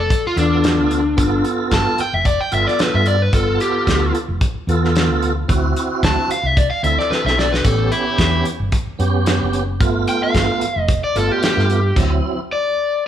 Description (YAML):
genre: straight-eighth soul blues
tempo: 111 BPM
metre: 4/4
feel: swing 54% on 16ths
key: unclear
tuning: A4 = 440 Hz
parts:
  - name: overdriven semi-hollow guitar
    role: melody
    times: 0.0-13.0 s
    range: D4 to A5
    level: -19 LUFS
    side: left 2 dB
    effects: none
  - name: hollow-body short-scale fingered electric bass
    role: bass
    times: 0.0-12.2 s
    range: F1 to G2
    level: -20 LUFS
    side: equal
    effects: none
  - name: warm soul drum kit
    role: drums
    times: 0.1-12.1 s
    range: crash cymbal, hi-hat, kick drum, snare drum, splash cymbal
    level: -20 LUFS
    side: equal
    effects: none
  - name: tonewheel organ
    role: accompaniment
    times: 0.4-12.4 s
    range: F#3 to A4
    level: -22 LUFS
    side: right 3 dB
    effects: slow rotary speaker, overdrive, chorus vibrato
room: moderate large studio reverb, RT60 1.2 s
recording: band playing live in one room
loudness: -15 LUFS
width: side -10 dB against mid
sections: 0.0-13.1 A section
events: drum fill 7.1-7.6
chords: 0.0 G9; 5.5 D9; 7.6 A9; 9.8 G9; 12.0 D9